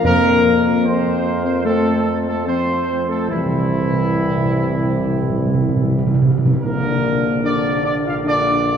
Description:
classical; 74 BPM; 4/4; straight; F major; A4 = 440 Hz
warm trumpet section; melody; 0.0-8.8 s; E4 to F5; -21 LUFS; right 1 dB
bright trombone section; sustained chords; 0.0-8.8 s; D3 to D4; -25 LUFS; right 4 dB
mellow French horn section; sustained chords; 0.0-8.8 s; E3 to F4; -21 LUFS; left 4 dB
clear tuba; bass; 0.0-8.8 s; Bb1 to F2; -22 LUFS; right 2 dB
timpani; percussion; 0.0-6.6 s; F2 to C3; -20 LUFS; right 1 dB
wet cathedral reverb, RT60 4.8 s; dark, warm production; -15 LUFS; side -8 dB against mid
0.0-6.6 A section; 6.6-8.8 B section
timpani fill 3.3-6.6
0.0 F5; 3.3 C; 6.6 Bb

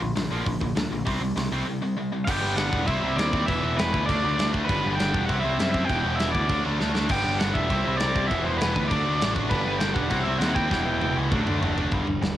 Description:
punk rock; 199 BPM; 4/4; straight; G major; A4 = 440 Hz
distorted electric guitar; riff; 0.0-12.4 s; E2 to D4; -30 LUFS; right 8 dB; overdrive
tight distorted guitar; riff; 0.0-12.4 s; G2 to E4; -30 LUFS; left 8 dB; distortion
growling picked electric bass; bass; 0.0-12.3 s; E1 to F#2; -28 LUFS; equal; overdrive
big rock drum kit; drums; 0.2-12.3 s; crash cymbal, hi-hat, kick drum, snare drum, toms; -28 LUFS; equal
biting lead guitar; melody; 2.2-11.2 s; B4 to G5; -28 LUFS; equal; overdrive, cassette tape
distorted electric guitar; riff; 2.3-12.4 s; E2 to D4; -32 LUFS; equal; overdrive
little or no reverb; home recording on cassette; -22 LUFS; side -12 dB against mid
0.0-2.3 A section; 2.3-11.9 B section
drum fill 6.8-7.1, 10.7-11.9
0.0 Bb; 1.1 C5; 2.3 G; 2.9 C; 3.5 Em; 4.1 D; 4.7 G; 5.3 C; 5.9 Em; 6.5 D; 7.1 G; 7.7 C; 8.3 Em; 8.9 D; 9.5 G; 10.1 C; 10.7 Em; 11.3 D

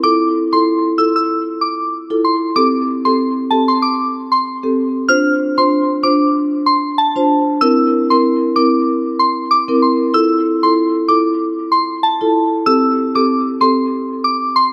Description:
dancehall; 95 BPM; 4/4; swing 56% on 16ths; D minor; A4 = 440 Hz
soft synth bell; melody; 0.0-14.7 s; A5 to F6; -18 LUFS; equal; chorus, dub echo
marimba with soft mallets; accompaniment; 0.0-13.9 s; C4 to C5; -17 LUFS; equal; dub echo
moderate spring reverb, RT60 2.2 s; echo-heavy mix; -15 LUFS; mono
0.0-5.1 A section; 5.1-14.7 B section
0.0 Fmaj7; 2.6 Am7; 5.1 Dm7; 7.6 C7; 10.1 Fmaj7; 12.7 Am7

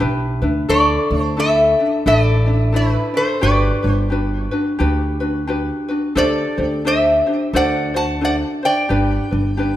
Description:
Hawaiian; 88 BPM; 4/4; swing 60% on 8ths; A4 = 441 Hz
ukulele; accompaniment; 0.0-9.8 s; D4 to D5; -20 LUFS; left 1 dB
upright bass; bass; 0.0-9.8 s; G1 to D2; -20 LUFS; equal
metal-body resonator slide guitar; melody; 0.7-9.8 s; E4 to A5; -18 LUFS; equal
moderate recital hall reverb, RT60 1.6 s; -15 LUFS; side -13 dB against mid
0.7-9.8 A section
0.0 G6; 0.7 Dsus2; 3.4 Gmaj7; 6.2 D7sus4; 7.5 D7; 8.9 G

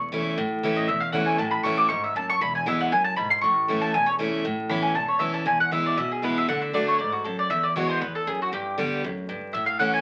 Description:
bluegrass; 235 BPM; 4/4; swing 53% on 8ths; A major; A4 = 440 Hz
mandolin; melody; 0.0-10.0 s; F#4 to D6; -26 LUFS; equal
picked steel-string acoustic guitar; accompaniment; 0.0-10.0 s; E2 to G4; -29 LUFS; equal
upright bass; bass; 0.0-9.9 s; E1 to A2; -45 LUFS; equal
wet studio ambience, RT60 0.5 s; very old 78 rpm record, vinyl crackle; -25 LUFS; mono
0.0-4.4 A section; 4.4-10.0 B section
mandolin solo 0.0-4.4
0.0 A; 2.4 E; 3.4 A; 4.4 Aadd9; 5.5 E; 6.5 D; 7.5 Eadd9; 8.5 G

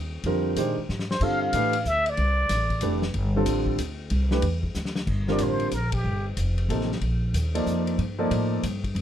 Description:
modal jazz; 186 BPM; 3/4; swing 64% on 8ths; G minor from 5.1 s; A4 = 443 Hz
upright bass; bass; 0.0-9.0 s; F1 to Bb2; -26 LUFS; equal
vintage drum kit; drums; 0.2-9.0 s; crash cymbal, hi-hat, kick drum, ride cymbal, snare drum; -34 LUFS; left 2 dB
warm grand piano; accompaniment; 0.3-8.6 s; C3 to D5; -26 LUFS; right 1 dB
trumpet with plunger mute; melody; 1.1-3.0, 5.3-6.3 s; G4 to F5; -26 LUFS; equal
little or no reverb; -23 LUFS; side -10 dB against mid
0.0-5.1 A section; 5.1-9.0 B section
drum fill 0.9-1.2, 4.8-5.1; band accent 5.9
0.0 F9sus4; 1.2 G9sus4; 5.1 Gm11

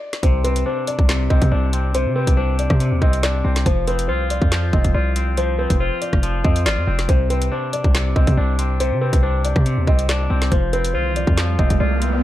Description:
hip hop, drill; 140 BPM; 4/4; half-time; C harmonic minor; A4 = 438 Hz
dark grand piano; melody; 0.0-12.0 s; B4 to Eb5; -25 LUFS; left 1 dB; low-pass filter, ping-pong delay
drill drum kit; drums; 0.1-12.1 s; handclaps, hi-hat, kick drum, rim click, snare drum; -19 LUFS; equal
twangy electric guitar; accompaniment; 0.2-12.2 s; C3 to F4; -24 LUFS; left 1 dB; low-pass filter
hard-hitting 808-style bass; bass; 0.2-12.2 s; F1 to C3; -20 LUFS; equal
riser; sound effects; 11.0-12.2 s; -25 LUFS; right 4 dB
little or no reverb; dark, warm production; -16 LUFS; side -14 dB against mid
0.0-12.2 A section
break 0.0; riser 11.0-12.2
0.2 Csus2; 3.7 F5; 7.1 Csus2; 10.5 F5

